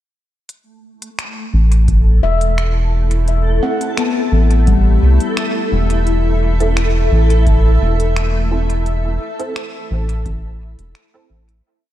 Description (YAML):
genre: ambient dub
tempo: 86 BPM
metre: 4/4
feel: straight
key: A dorian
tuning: A4 = 441 Hz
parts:
  - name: granular cloud pad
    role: sustained chords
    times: 2.3-11.7 s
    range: E4 to E5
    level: -23 LUFS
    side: equal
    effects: built-in reverb, lush chorus
  - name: organic electronic drum kit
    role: drums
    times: 0.5-11.6 s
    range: finger snaps, hi-hat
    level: -28 LUFS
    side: equal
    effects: dub echo
  - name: backwards swelling texture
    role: texture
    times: 1.3-11.7 s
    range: A3 to A4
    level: -27 LUFS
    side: equal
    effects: built-in reverb, ensemble chorus
  - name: round analog bass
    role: bass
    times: 1.5-11.6 s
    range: E1 to C2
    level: -13 LUFS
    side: equal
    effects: none
  - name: electronic kick drum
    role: drums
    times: 1.9-10.4 s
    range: none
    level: -19 LUFS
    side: equal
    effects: none
  - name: handpan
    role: arpeggios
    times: 2.2-8.0 s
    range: G3 to F#5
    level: -22 LUFS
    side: left 6 dB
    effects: ping-pong delay
  - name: filtered dub chord stab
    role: stabs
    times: 6.6-11.6 s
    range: C4 to A4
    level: -27 LUFS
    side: right 4 dB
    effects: ensemble chorus, dub echo
room: light reverb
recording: none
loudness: -13 LUFS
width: side -13 dB against mid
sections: 0.5-11.7 groove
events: fade-in on ambient pad 0.5-11.7; fade-out 7.9-11.7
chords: 0.5 Am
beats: | 0.49 1.19 1.89 2.58 | 3.28 3.98 4.68 5.38 | 6.07 6.77 7.47 8.17 | 8.86 9.56 10.26 10.96